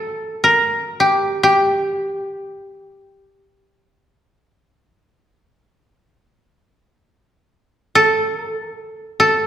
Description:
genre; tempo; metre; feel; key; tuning
japanese traditional, Japanese chamber music; free time; none; none; unclear; A4 = 440 Hz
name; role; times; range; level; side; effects
koto; solo; 0.0-9.5 s; G4 to Bb4; -15 LUFS; equal; none
room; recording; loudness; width
wet recital hall reverb, RT60 1.9 s; recorded in a church or concert hall; -15 LUFS; side -10 dB against mid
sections
0.0-9.5 A section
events
slowing down 5.2-9.5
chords
none

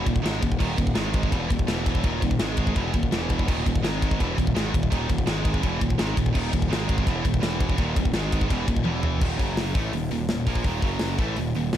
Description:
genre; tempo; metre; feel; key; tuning
heavy metal; 167 BPM; 4/4; straight; Eb minor; A4 = 440 Hz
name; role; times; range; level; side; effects
heavy high-gain guitar; riff; 0.0-11.8 s; Eb2 to Bb3; -30 LUFS; left 12 dB; distortion
high-gain distorted guitar; riff; 0.0-11.8 s; Eb2 to Bb3; -29 LUFS; right 9 dB; distortion
fuzz picked electric bass; bass; 0.0-11.8 s; Eb1 to Bb1; -28 LUFS; equal; overdrive
tight metal drum kit; drums; 0.1-11.8 s; crash cymbal, hi-hat, kick drum, ride cymbal, snare drum, toms; -25 LUFS; equal; none
room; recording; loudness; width
studio ambience; dark, warm production; -22 LUFS; side -11 dB against mid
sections
0.0-9.2 A section; 9.2-11.8 B section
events
drum fill 8.9-9.2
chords
0.0 Eb5; 1.0 Ab5; 1.3 Eb5; 1.7 E5; 2.0 Eb5; 2.4 Ab5; 2.8 Eb5; 3.1 E5; 3.5 Eb5; 3.8 Ab5; 4.2 Eb5; 5.3 Ab5; 5.6 Eb5; 6.7 Ab5; 7.1 Eb5; 7.4 E5; 7.8 Eb5; 8.1 Ab5; 8.5 Eb5; 8.9 E5; 9.2 Eb5; 9.4 Gb5; 9.8 Eb5; 10.8 Gb5; 11.2 Eb5

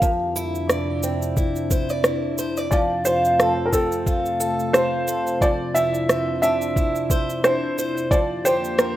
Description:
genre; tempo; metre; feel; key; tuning
folktronica; 89 BPM; 4/4; swing 56% on 16ths; unclear; A4 = 440 Hz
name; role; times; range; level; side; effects
warbly tape-like pad; sustained chords; 0.0-9.0 s; F2 to G4; -28 LUFS; left 1 dB; chorus, built-in reverb
picked old ladder-braced acoustic guitar; arpeggios; 0.0-9.0 s; F3 to D5; -24 LUFS; equal; vintage 12-bit sampler grit, tape echo
electronic cabasa and rim click; drums; 0.0-8.9 s; none; -23 LUFS; right 1 dB; overdrive
electronic kick drum; drums; 0.0-8.3 s; none; -22 LUFS; equal; none
felt-muted upright piano; melody; 2.7-9.0 s; A4 to E5; -22 LUFS; equal; tape echo
room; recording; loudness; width
light reverb, studio reverb; rough home demo mix; -19 LUFS; side -14 dB against mid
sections
0.0-9.0 A section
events
none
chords
0.0 Cadd9/F; 2.7 F; 5.4 Cadd9/F; 8.1 Gm/F

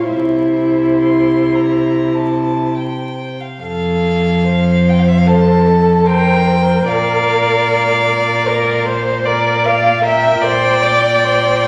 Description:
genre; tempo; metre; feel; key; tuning
classical, slow romantic movement for string quartet; 66-78 BPM; 4/4; rubato; F major; A4 = 440 Hz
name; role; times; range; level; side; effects
warm violin; melody; 0.0-11.7 s; E5 to C6; -23 LUFS; equal; none
dark violin; second line; 0.0-11.7 s; A4 to F5; -20 LUFS; equal; none
dark viola; accompaniment; 0.0-11.7 s; E4 to D5; -18 LUFS; equal; none
warm cello; bass; 0.0-11.7 s; F2 to C3; -19 LUFS; equal; none
room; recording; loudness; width
wet recital hall reverb, RT60 1.4 s; vinyl crackle; -14 LUFS; mono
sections
0.0-3.6 A section; 3.6-11.7 B section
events
none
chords
0.1 C; 3.6 F; 6.9 Bb

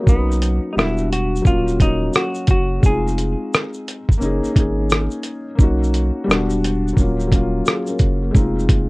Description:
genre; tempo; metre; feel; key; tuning
lo-fi hip hop; 87 BPM; 4/4; swing 64% on 16ths; Eb minor; A4 = 441 Hz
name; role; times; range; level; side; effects
felt-muted upright piano; accompaniment; 0.0-8.9 s; F#3 to A#4; -21 LUFS; left 1 dB; cassette tape, low-pass filter
hollow-body jazz guitar; melody; 0.1-4.9 s; B3 to Ab4; -24 LUFS; equal; low-pass filter, plate reverb
saturated sub bass; bass; 0.1-8.9 s; Eb1 to B1; -21 LUFS; equal; none
dusty soul sampler-style drum kit; drums; 0.1-8.9 s; hi-hat, kick drum, rim click, shaker; -16 LUFS; equal; none
room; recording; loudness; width
light reverb; cassette tape; -16 LUFS; side -24 dB against mid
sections
0.0-8.9 A section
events
none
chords
0.1 Bmaj7; 0.8 Em7; 1.5 Ebm7; 2.8 Fm7; 4.2 Gb6; 5.6 Bmaj7; 6.3 Em7; 7.0 Ebm7; 8.3 Fm7

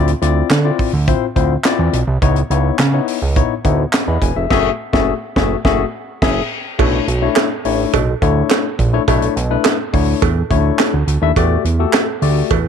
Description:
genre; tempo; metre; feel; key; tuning
early-eighties boogie funk; 105 BPM; 4/4; straight; B minor from 6.8 s; A4 = 440 Hz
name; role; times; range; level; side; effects
barky tine electric piano; accompaniment; 0.0-12.6 s; A3 to B5; -19 LUFS; left 13 dB; none
fat analog bass; bass; 0.0-12.7 s; E1 to D3; -16 LUFS; right 2 dB; none
tight funk drum kit; drums; 0.1-12.6 s; crash cymbal, handclaps, hi-hat, kick drum, snare drum; -19 LUFS; right 1 dB; none
cowbell; percussion; 6.8-12.6 s; none; -20 LUFS; right 16 dB; none
room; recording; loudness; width
light reverb, studio reverb; 1960s-style stereo with parts hard left and right; -13 LUFS; side -7 dB against mid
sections
0.0-6.8 A section; 6.8-12.7 B section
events
band accent 4.5-6.8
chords
0.0 Dm9; 2.2 C#m9; 4.5 F#m9; 6.8 Bm11; 11.4 Em11

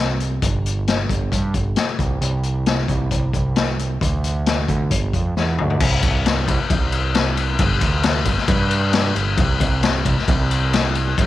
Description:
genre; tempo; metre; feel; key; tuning
classic rock; 134 BPM; 4/4; straight; unclear; A4 = 440 Hz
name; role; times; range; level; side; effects
growling picked electric bass; bass; 0.0-11.3 s; G1 to G2; -21 LUFS; right 2 dB; overdrive
raw garage drum kit; drums; 0.2-11.3 s; crash cymbal, hi-hat, kick drum, ride cymbal, snare drum, toms; -19 LUFS; left 2 dB; none
room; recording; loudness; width
little or no reverb; 1960s-style stereo; -17 LUFS; side -14 dB against mid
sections
0.0-5.8 A section; 5.8-11.3 B section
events
drum fill 5.4-5.8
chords
none

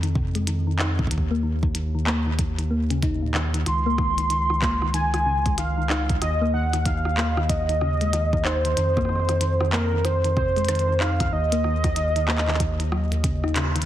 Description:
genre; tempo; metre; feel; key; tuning
IDM; 94 BPM; 4/4; swing 62% on 16ths; unclear; A4 = 440 Hz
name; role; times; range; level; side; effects
thumb-piano-like synth pluck; arpeggios; 0.0-13.9 s; Eb2 to Eb4; -28 LUFS; left 3 dB; chorus, digital delay
round analog bass; bass; 0.0-13.9 s; Db2 to F2; -24 LUFS; equal; none
glitchy drum kit; drums; 0.0-13.9 s; handclaps, hi-hat, rim click; -29 LUFS; equal; digital delay
electronic kick drum; drums; 0.2-13.4 s; none; -26 LUFS; equal; none
warm velvety synth lead; melody; 3.7-13.2 s; Bb4 to C6; -25 LUFS; right 1 dB; chorus, digital delay
room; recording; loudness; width
light reverb, digital ambience; heavily compressed radio sound; -20 LUFS; side -12 dB against mid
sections
0.0-13.9 A section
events
filter sweep on synth arpeggio sound 0.0-13.9; drum fill 13.6; band accent 13.6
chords
0.0 N.C.; 1.1 Eb5; 3.7 Dbmaj7; 6.2 Ebsus2; 8.8 F5; 11.3 N.C.

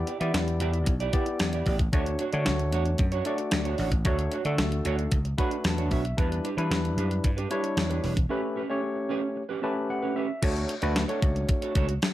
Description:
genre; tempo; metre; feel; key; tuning
early-eighties boogie funk; 113 BPM; 4/4; straight; D major; A4 = 440 Hz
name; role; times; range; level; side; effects
barky tine electric piano; accompaniment; 0.0-11.9 s; G3 to B5; -30 LUFS; left 2 dB; none
semi-hollow electric guitar; riff; 0.1-12.1 s; C#4 to E5; -33 LUFS; right 6 dB; lush chorus
crisp 8-bit digital drum machine; drums; 0.1-12.1 s; crash cymbal, hi-hat, kick drum, snare drum; -27 LUFS; equal; none
vintage slap bass; bass; 0.2-12.0 s; E1 to E3; -28 LUFS; equal; none
room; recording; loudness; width
light reverb; none; -24 LUFS; side -14 dB against mid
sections
0.0-10.4 A section; 10.4-12.1 B section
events
tine electric piano fill 5.1-6.2, 9.4-10.4; break 8.3-10.4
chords
0.0 Em7; 1.9 Dmaj7; 6.2 Em7; 8.3 A9; 10.4 Dmaj7

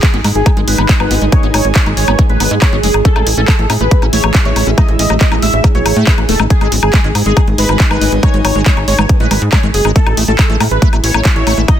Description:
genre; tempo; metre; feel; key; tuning
psychedelic trance; 139 BPM; 4/4; straight; G# phrygian; A4 = 440 Hz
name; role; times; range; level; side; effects
wide unison lead; melody; 0.0-11.8 s; G#4 to E5; -18 LUFS; equal; phaser, sidechain pumping, digital delay
evolving wavetable pad; sustained chords; 0.2-11.8 s; G#3 to G#4; -22 LUFS; right 4 dB; phaser, built-in reverb, sidechain pumping
big-room dance drum kit; drums; 0.0-11.8 s; handclaps, hi-hat, woodblock; -17 LUFS; left 2 dB; none
electronic kick drum; drums; 0.0-11.8 s; none; -11 LUFS; equal; none
airy breathy pad; texture; 0.0-11.8 s; G#3 to G#5; -23 LUFS; equal; chorus, sidechain pumping
liquid acid bass; riff; 0.1-11.6 s; G#3 to C#4; -21 LUFS; moving between left 5 dB and right 7 dB; chorus, auto-pan, cassette tape, sidechain pumping, digital delay
tight sequencer bass; bass; 0.1-11.7 s; E1 to A2; -15 LUFS; equal; tube saturation
formant-sweep wobble bass; second line; 0.7-11.2 s; B3 to D#4; -31 LUFS; left 3 dB; none
room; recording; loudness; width
little or no reverb; dense, heavily limited modern master; -9 LUFS; side -10 dB against mid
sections
0.0-11.8 A section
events
none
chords
0.0 G#5; 3.1 A5; 6.5 G#5; 10.0 A5

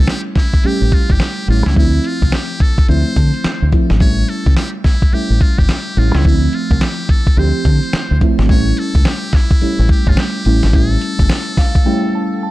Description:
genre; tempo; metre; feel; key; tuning
R&B, new jack swing; 107 BPM; 4/4; swing 63% on 16ths; unclear; A4 = 440 Hz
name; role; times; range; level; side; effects
trumpet with metal mute; melody; 0.0-12.4 s; E4 to C#5; -24 LUFS; equal; none
mellow FM electric piano; accompaniment; 0.0-12.5 s; F3 to A5; -19 LUFS; right 1 dB; chorus, phaser
deep dub fingered electric bass; bass; 0.0-11.3 s; G1 to D3; -14 LUFS; equal; none
dusty soul sampler-style drum kit; drums; 0.1-11.9 s; hi-hat, kick drum, snare drum; -13 LUFS; equal; none
room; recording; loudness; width
digital ambience; dark, warm production; -12 LUFS; side -17 dB against mid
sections
0.0-12.5 A section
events
FM electric piano fill 11.3-12.5; break 11.9-12.5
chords
0.0 A7; 1.8 Dm9; 4.0 A7; 6.2 Dm9; 8.5 A7

